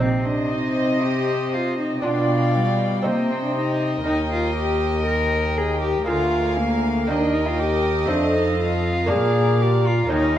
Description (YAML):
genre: classical, baroque-style concerto movement with solo episodes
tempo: 119 BPM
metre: 4/4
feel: straight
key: C minor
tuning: A4 = 439 Hz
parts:
  - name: dark cello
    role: melody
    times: 0.0-10.4 s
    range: G3 to Bb4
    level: -23 LUFS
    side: left 2 dB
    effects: none
  - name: rich chamber violin section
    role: melody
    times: 0.0-10.4 s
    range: Eb5 to Ab5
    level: -34 LUFS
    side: left 2 dB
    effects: none
  - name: rich chamber violin section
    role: second line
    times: 0.0-10.4 s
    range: Db5 to F5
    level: -28 LUFS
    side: left 2 dB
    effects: none
  - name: dark chamber viola section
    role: accompaniment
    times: 0.0-10.4 s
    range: A4 to D5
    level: -30 LUFS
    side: right 1 dB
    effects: none
  - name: lute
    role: accompaniment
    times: 0.0-10.4 s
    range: D2 to F4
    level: -28 LUFS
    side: right 2 dB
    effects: none
  - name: warm chamber cello section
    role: bass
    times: 0.0-10.4 s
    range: D2 to C3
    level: -24 LUFS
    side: right 1 dB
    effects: none
room: moderate recital hall reverb, RT60 1.7 s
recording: close, detailed microphones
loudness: -19 LUFS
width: side -11 dB against mid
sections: 0.0-10.4 A section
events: none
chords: 0.0 Cm; 2.1 G7/B; 3.1 Cm; 4.1 Eb; 6.1 Bb7/D; 7.1 Eb; 8.1 F7; 9.1 Bb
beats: | 0.02 0.53 1.04 1.55 | 2.05 2.56 3.06 3.56 | 4.07 4.58 5.08 5.58 | 6.09 6.59 7.09 7.60 | 8.10 8.60 9.11 9.61 | 10.11